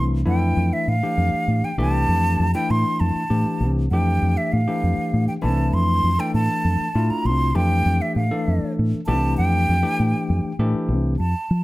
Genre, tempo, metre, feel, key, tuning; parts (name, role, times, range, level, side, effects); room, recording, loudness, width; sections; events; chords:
electric jazz fusion; 66 BPM (dotted quarters); 6/8; straight; F major; A4 = 444 Hz
mellow hollow silver concert flute; melody; 0.0-11.6 s; E5 to C6; -24 LUFS; right 1 dB; slapback echo, plate reverb
barky tine electric piano; accompaniment; 0.0-11.1 s; E3 to A4; -25 LUFS; left 2 dB; medium stereo tremolo, plate reverb
fingered electric bass; bass; 0.0-11.6 s; C2 to F3; -20 LUFS; equal
light reverb; -18 LUFS; side -18 dB against mid
0.0-11.2 A section
0.0 Fmaj9